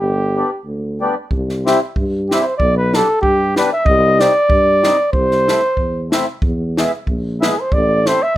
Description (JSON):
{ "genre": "alpine folk, alpine dance band", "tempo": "93 BPM", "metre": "2/4", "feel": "swing 54% on 8ths, rubato", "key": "unclear", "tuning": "A4 = 439 Hz", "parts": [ { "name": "mellow flugelhorn", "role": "melody", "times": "0.0-8.4 s", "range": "G4 to E5", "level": "-15 LUFS", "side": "equal", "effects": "none" }, { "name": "mellow tuba", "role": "bass", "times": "0.0-8.4 s", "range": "G1 to G2", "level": "-19 LUFS", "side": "equal", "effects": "none" }, { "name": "mellow accordion", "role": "accompaniment", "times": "0.4-8.2 s", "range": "G3 to E4", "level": "-18 LUFS", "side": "left 2 dB", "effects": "none" }, { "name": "compact cocktail drum kit", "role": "drums", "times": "1.3-8.2 s", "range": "kick drum, snare drum", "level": "-19 LUFS", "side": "equal", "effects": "none" } ], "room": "light reverb", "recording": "minimal, uncompressed stereo recording", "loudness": "-13 LUFS", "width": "side -14 dB against mid", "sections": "0.0-1.3 A section; 1.3-8.4 B section", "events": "none", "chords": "0.0 G; 1.3 C; 2.6 G/B; 3.9 Cm; 5.1 Am/C; 6.4 E; 7.7 Am", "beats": "| 0.02 0.66 | 1.31 1.96 | 2.60 3.23 | 3.86 4.49 | 5.13 5.77 | 6.42 7.07 | 7.72 8.36" }